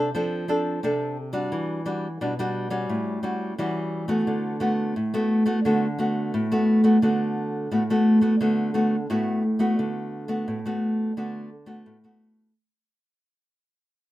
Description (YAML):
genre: samba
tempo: 87 BPM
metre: 4/4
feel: straight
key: D major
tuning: A4 = 439 Hz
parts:
  - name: nylon-string guitar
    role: solo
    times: 0.0-12.5 s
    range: A2 to A4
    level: -22 LUFS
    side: equal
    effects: none
room: moderate studio reverb, RT60 0.7 s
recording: minimal, uncompressed stereo recording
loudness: -22 LUFS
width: side -15 dB against mid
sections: 0.0-9.8 A section; 9.8-12.5 B section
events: fade-out 9.8-12.5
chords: 0.0 F6; 1.5 Em9; 2.9 A13; 4.3 D6